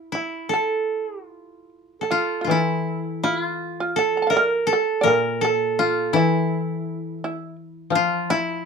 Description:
japanese traditional, Japanese chamber music; 72-86 BPM; 4/4; rubato; A4 = 439 Hz
koto; melody; 0.0-8.7 s; E4 to Bb4; -22 LUFS; right 2 dB
shamisen; second line; 0.1-8.7 s; E4 to Bb5; -25 LUFS; right 2 dB
koto; accompaniment; 2.5-8.7 s; Bb2 to F3; -25 LUFS; left 4 dB
moderate studio reverb, RT60 0.5 s; dark, warm production; -20 LUFS; side -5 dB against mid
0.0-2.1 A section; 2.1-8.7 B section

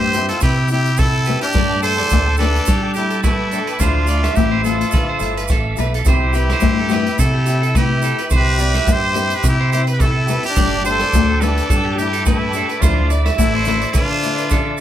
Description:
highlife guitar band; 106 BPM; 4/4; swing 53% on 16ths; C major; A4 = 436 Hz
trumpet with straight mute; melody; 0.0-14.7 s; E4 to C5; -21 LUFS; equal
growling trumpet; second line; 0.0-14.8 s; A3 to A4; -26 LUFS; left 3 dB
bright tonewheel organ; sustained chords; 0.0-14.8 s; D5 to E6; -30 LUFS; equal; chorus vibrato, fast rotary speaker
electric guitar at the edge of break-up; arpeggios; 0.0-14.8 s; G4 to E5; -24 LUFS; right 5 dB
fingered electric bass; bass; 0.0-14.8 s; G1 to G3; -20 LUFS; right 1 dB
fingerpicked steel-string acoustic guitar; accompaniment; 0.1-14.4 s; E3 to A4; -27 LUFS; left 4 dB
vintage drum kit; drums; 0.1-14.7 s; hi-hat, kick drum, rim click; -20 LUFS; equal
maracas; percussion; 0.1-14.8 s; -30 LUFS; right 6 dB
congas; percussion; 0.2-14.7 s; -23 LUFS; left 8 dB
moderate studio reverb, RT60 0.6 s; band playing live in one room; -14 LUFS; side -11 dB against mid
0.0-14.8 A section
0.0 C; 1.6 Gsus2; 3.8 Dmadd9; 6.1 C; 10.6 Gsus2; 12.8 Dmadd9

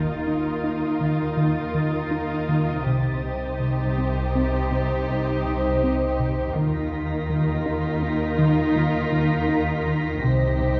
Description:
cinematic, suspense film score; 81 BPM; 5/4; straight; A4 = 440 Hz
muted symphonic violin section; melody; 0.0-10.8 s; Bb4 to C5; -33 LUFS; equal
muted chamber violin section; second line; 0.0-10.8 s; F4 to G4; -35 LUFS; equal
muted symphonic viola section; accompaniment; 0.0-10.8 s; Eb4; -33 LUFS; equal
chorused synth bass; riff; 0.0-10.8 s; C3 to Eb4; -28 LUFS; equal
muted symphonic cello section; bass; 0.0-10.8 s; C3 to Eb3; -32 LUFS; equal
muted symphonic double bass section; bass; 0.0-10.8 s; C2 to Eb2; -30 LUFS; equal
impact; sound effects; 0.0-2.9 s; -48 LUFS; equal
muted symphonic violin section; texture; 0.0-10.8 s; Eb6 to B6; -38 LUFS; equal
wet recital hall reverb, RT60 1.5 s; recorded in a church or concert hall, nothing above 7.5 kHz; -23 LUFS; mono
0.0-10.8 A section
impact 0.0-2.9
0.0 Ebsus2; 2.9 Cm; 6.6 Ebsus2; 10.2 Cm

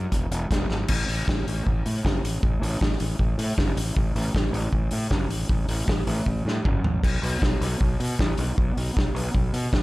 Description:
indie rock; 156 BPM; 4/4; straight; A4 = 440 Hz
fuzz fingered electric bass; bass; 0.0-9.8 s; E1 to B2; -26 LUFS; equal; overdrive
vintage drum kit; drums; 0.1-9.8 s; crash cymbal, hi-hat, kick drum, snare drum, toms; -24 LUFS; equal
light reverb; -22 LUFS; side -19 dB against mid
0.9-9.8 A section
drum fill 0.7, 6.3-7.0

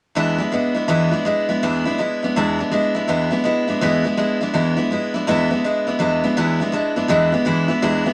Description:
rock; 164 BPM; 4/4; swing 64% on 8ths; E mixolydian; A4 = 440 Hz
picked steel-string acoustic guitar; solo; 0.2-8.1 s; E2 to E4; -19 LUFS; equal
wet studio reverb, RT60 0.5 s; vinyl crackle; -19 LUFS; mono
0.2-6.0 A section; 6.0-8.1 B section
0.2 E7

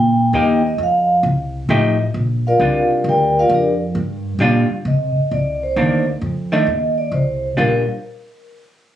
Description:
jazz, small-group swing and bop; 133 BPM; 3/4; swing 67% on 8ths; Bb major; A4 = 445 Hz
vibraphone with soft mallets; melody; 0.0-7.9 s; D4 to G5; -17 LUFS; equal; plate reverb
upright bass; bass; 0.0-7.9 s; A1 to C3; -19 LUFS; equal
vintage hollow-body jazz guitar; accompaniment; 0.3-7.8 s; Eb3 to G4; -18 LUFS; equal
moderate studio reverb, RT60 0.7 s; recorded on a phone in the room, studio ambience, compression; -15 LUFS; side -11 dB against mid
0.0-4.9 A section; 4.9-7.6 B section; 7.6-8.9 C section
0.0 Cm7 (rootless); 0.8 F9; 2.1 Bb6; 4.9 Cm9; 6.2 F5; 7.6 Bb6

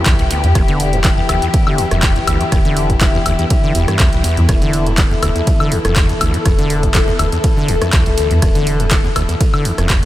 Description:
acid house; 122 BPM; 4/4; swing 53% on 16ths; E minor; A4 = 440 Hz
dark chamber string section; sustained chords; 0.0-10.1 s; E3 to A4; -20 LUFS; left 3 dB; vintage 12-bit sampler grit, sidechain pumping
acid bass, saw; riff; 0.0-10.1 s; E1 to E3; -19 LUFS; equal; tube saturation, tape echo
warm sub bass; bass; 0.1-10.1 s; E1 to E2; -18 LUFS; equal; sidechain pumping
electronic kick drum; drums; 0.1-10.0 s; -15 LUFS; equal
punchy analog drum machine; drums; 0.1-10.1 s; handclaps, hi-hat, ride cymbal, rim click, woodblock; -20 LUFS; equal
light reverb; -12 LUFS; side -14 dB against mid
0.0-10.1 A section
0.0 Em7

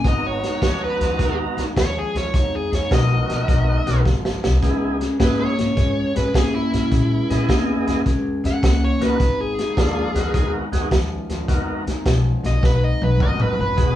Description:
electric blues shuffle; 105 BPM; 4/4; swing 67% on 8ths; G# minor; A4 = 439 Hz
dark smooth lead guitar; melody; 0.0-14.0 s; E4 to F#5; -24 LUFS; equal; overdrive
tonewheel organ; accompaniment; 0.0-14.0 s; A#3 to A#5; -26 LUFS; right 3 dB; slow rotary speaker, overdrive
electric guitar through a small old amp; riff; 0.0-14.0 s; E2 to A#3; -25 LUFS; left 2 dB
upright bass; bass; 0.0-14.0 s; E1 to A#2; -22 LUFS; left 1 dB
crunchy breakbeat drum kit; drums; 0.0-14.0 s; hi-hat, kick drum, snare drum, toms; -22 LUFS; equal
wet large studio reverb, RT60 0.8 s; band playing live in one room, small room ambience; -17 LUFS; side -12 dB against mid
0.0-14.0 A section
drum fill 4.1-4.6, 12.6-13.8
0.0 G#m7; 4.6 C#m7; 9.2 G#m7

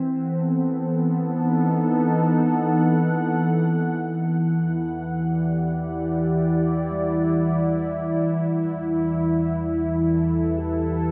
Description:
ambient; 55 BPM; 4/4; straight; E minor; A4 = 439 Hz
warm analog pad; sustained chords; 0.0-11.1 s; E3 to F#5; -23 LUFS; equal; lush chorus
organ-like drone; drone; 0.0-4.2 s; E3; -47 LUFS; equal
warm sub bass; bass; 4.0-11.1 s; E2; -38 LUFS; equal
mellow tine electric piano; arpeggios; 6.9-11.1 s; G3 to G4; -39 LUFS; equal
moderate huge ambient reverb, RT60 7.6 s; -23 LUFS; mono
0.0-4.1 A section; 4.1-11.1 B section
filter sweep on analog synth pad 0.0-4.1; fade-in on sub bass 4.1-11.1
0.0 B7b9/E; 4.1 Em9

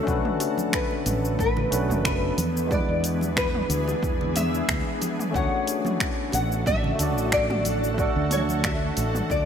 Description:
sunset chillout; 91 BPM; 4/4; swing 54% on 16ths; D lydian; A4 = 441 Hz
nylon-string guitar; melody; 0.0-9.5 s; A4 to F#5; -28 LUFS; left 2 dB; ensemble chorus, ping-pong delay
barky tine electric piano; accompaniment; 0.0-9.5 s; G#3 to D5; -29 LUFS; moving between left 8 dB and right 5 dB; auto-pan, ping-pong delay
shimmering ambient pad; sustained chords; 0.0-9.5 s; D3 to A4; -32 LUFS; left 1 dB; chorus, built-in reverb
fretless electric bass; bass; 0.1-9.5 s; F#1 to E2; -27 LUFS; equal; ensemble chorus
deep house drum kit; drums; 0.1-9.4 s; cabasa, finger snaps, hi-hat, toms; -29 LUFS; right 1 dB; overdrive
electronic kick drum; drums; 0.1-9.4 s; -29 LUFS; equal; overdrive
bongos and congas; percussion; 0.4-9.3 s; -36 LUFS; right 2 dB
moderate lush hall reverb, RT60 2.9 s; bright 1980s-style digital production; -22 LUFS; side -8 dB against mid
0.0-9.5 A section
0.1 Bm9; 2.4 E7; 5.3 Dmaj7

